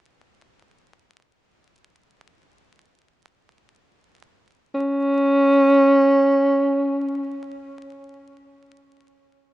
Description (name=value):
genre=hip hop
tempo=free time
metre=none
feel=none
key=unclear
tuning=A4 = 440 Hz
part: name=mellow tenor saxophone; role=melody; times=4.7-7.4 s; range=C#4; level=-16 LUFS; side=equal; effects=low-pass filter
room=light reverb, small room ambience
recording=rough home demo mix, vinyl crackle, nothing above 10.9 kHz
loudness=-16 LUFS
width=side -17 dB against mid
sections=0.0-4.7 A section; 4.7-8.4 B section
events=none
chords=none